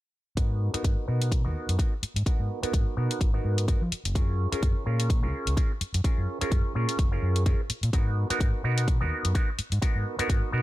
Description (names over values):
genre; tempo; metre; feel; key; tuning
filtered disco house; 127 BPM; 4/4; swing 56% on 16ths; G# dorian; A4 = 437 Hz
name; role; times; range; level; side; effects
auto-wah clav; accompaniment; 0.4-10.6 s; B3 to A#4; -32 LUFS; right 1 dB; overdrive, phaser, sidechain pumping, low-pass filter
overdriven fingered electric bass; bass; 0.4-10.6 s; F#1 to E#3; -27 LUFS; equal; sidechain pumping, low-pass filter
electronic hi-hat; drums; 0.4-10.4 s; none; -34 LUFS; left 3 dB; sidechain pumping on hats
electronic kick drum; drums; 0.4-10.4 s; none; -25 LUFS; equal; none
room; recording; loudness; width
digital ambience; none; -24 LUFS; side -16 dB against mid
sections
0.4-10.6 A section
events
filter sweep 0.4-10.6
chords
0.4 G#m7; 3.9 F#maj7; 7.9 G#m7